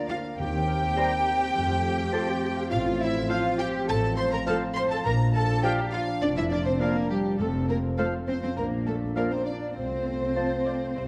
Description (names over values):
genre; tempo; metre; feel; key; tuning
cinematic, playful, whimsical film cue; 102 BPM; 4/4; straight; F major; A4 = 441 Hz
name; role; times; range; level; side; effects
mellow hollow silver concert flute; second line; 0.0-11.1 s; G4 to C6; -34 LUFS; equal; none
warm chamber violin section; second line; 0.0-11.1 s; G4 to C6; -39 LUFS; equal; none
dark French horn section; sustained chords; 0.0-11.1 s; F3 to F4; -35 LUFS; equal; none
concert harp; arpeggios; 0.0-11.1 s; F2 to C6; -38 LUFS; equal; none
warm chamber violin section; melody; 0.1-11.1 s; G4 to C6; -38 LUFS; equal; none
dark chamber cello section; bass; 0.1-11.1 s; G3 to C5; -33 LUFS; equal; none
warm chamber double bass section; bass; 0.4-11.1 s; F1 to F2; -33 LUFS; equal; none
clear oboe; second line; 1.0-10.5 s; F5 to Bb5; -40 LUFS; equal; none
warm clarinet; second line; 1.0-10.5 s; C5 to D5; -42 LUFS; equal; none
dark chamber viola section; accompaniment; 1.0-11.0 s; A4 to F5; -41 LUFS; equal; none
warm bassoon; accompaniment; 1.0-10.5 s; F3 to G3; -38 LUFS; equal; none
room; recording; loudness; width
moderate scoring stage reverb, RT60 1.6 s; dark, warm production; -26 LUFS; mono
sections
0.0-11.1 A section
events
none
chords
0.4 Cm7/Eb; 1.5 F; 2.7 F/A; 5.0 Bb; 7.4 F; 8.6 Bb; 9.8 F/C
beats
| 0.38 0.96 1.55 2.13 | 2.71 3.29 3.88 4.46 | 5.05 5.63 6.22 6.80 | 7.39 7.98 8.57 9.16 | 9.76 10.36 10.96